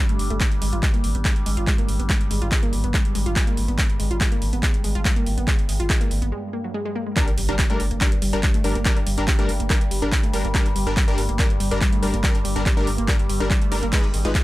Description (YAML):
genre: driving peak-time techno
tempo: 142 BPM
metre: 4/4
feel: straight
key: unclear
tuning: A4 = 438 Hz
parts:
  - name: overtone-sweeping drone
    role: drone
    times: 0.0-14.4 s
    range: G2 to G3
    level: -32 LUFS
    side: equal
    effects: chorus, built-in reverb, sidechain pumping
  - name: wide unison pluck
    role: riff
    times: 0.1-14.4 s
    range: F#3 to F4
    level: -29 LUFS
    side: right 1 dB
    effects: tube saturation, sidechain pumping, analog delay
  - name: techno drum kit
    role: drums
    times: 0.1-14.4 s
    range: handclaps, hi-hat, ride cymbal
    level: -27 LUFS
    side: equal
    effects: none
  - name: saturated sub bass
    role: bass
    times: 0.2-14.3 s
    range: G1 to Ab1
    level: -24 LUFS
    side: equal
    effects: overdrive, sidechain pumping, low-pass filter
  - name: electronic kick drum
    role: drums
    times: 0.4-14.4 s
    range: none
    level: -21 LUFS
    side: equal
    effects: none
  - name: supersaw stab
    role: stabs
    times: 7.2-14.3 s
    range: G3 to Cb5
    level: -27 LUFS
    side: left 2 dB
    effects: sidechain pumping, analog delay
  - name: impact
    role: sound effects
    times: 7.3-8.9 s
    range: none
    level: -32 LUFS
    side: equal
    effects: none
room: little or no reverb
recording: dry, gritty hardware recording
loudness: -19 LUFS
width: side -17 dB against mid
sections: 0.0-7.2 A section; 7.2-14.4 B section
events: break 6.3-7.2; drop 7.2-14.4; impact 7.2-8.9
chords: 0.4 N.C.; 7.2 Gm; 13.9 Abm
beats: | 0.41 0.83 1.25 1.67 | 2.10 2.52 2.94 3.36 | 3.79 4.21 4.63 5.05 | 5.48 5.90 6.32 6.74 | 7.17 7.59 8.01 8.43 | 8.86 9.28 9.70 10.12 | 10.55 10.97 11.39 11.81 | 12.24 12.66 13.08 13.50 | 13.93 14.35